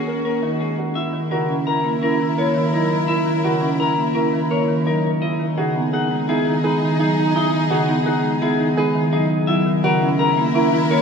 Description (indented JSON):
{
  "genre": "classical, minimalist pattern music",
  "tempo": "169 BPM",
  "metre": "6/4",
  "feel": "straight",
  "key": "unclear",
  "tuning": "A4 = 444 Hz",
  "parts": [
    { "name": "clean electric guitar", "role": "melody", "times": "0.0-11.0 s", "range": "G#4 to A#5", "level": "-23 LUFS", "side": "left 6 dB", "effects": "none" },
    { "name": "warm clarinet", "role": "second line", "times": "0.0-11.0 s", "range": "C#4 to E4", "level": "-26 LUFS", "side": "right 3 dB", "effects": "none" },
    { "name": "clear symphonic string section", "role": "sustained chords", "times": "0.0-11.0 s", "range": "C#4 to A#4", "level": "-28 LUFS", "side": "left 2 dB", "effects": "none" },
    { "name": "warm baby grand piano", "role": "arpeggios", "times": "0.1-11.0 s", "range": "D#4 to A#4", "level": "-24 LUFS", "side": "right 4 dB", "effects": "none" },
    { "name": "marimba with medium mallets", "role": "accompaniment", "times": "0.3-11.0 s", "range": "C#3 to C#4", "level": "-20 LUFS", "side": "equal", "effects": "none" }
  ],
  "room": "wet cathedral reverb, RT60 6.4 s",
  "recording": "in a vast, echoing space",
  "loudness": "-17 LUFS",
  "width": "side -6 dB against mid",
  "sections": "1.0-11.0 A section",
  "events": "none",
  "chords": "0.0 D#m7; 1.0 F#7; 5.2 Emaj9; 9.5 F#7",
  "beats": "0.25 0.61 | 0.96 1.32 1.67 2.03 2.38 2.74 | 3.09 3.45 3.80 4.16 4.51 4.87 | 5.22 5.58 5.93 6.29 6.64 7.00 | 7.35 7.71 8.06 8.42 8.77 9.13 | 9.48 9.84 10.19 10.55 10.90"
}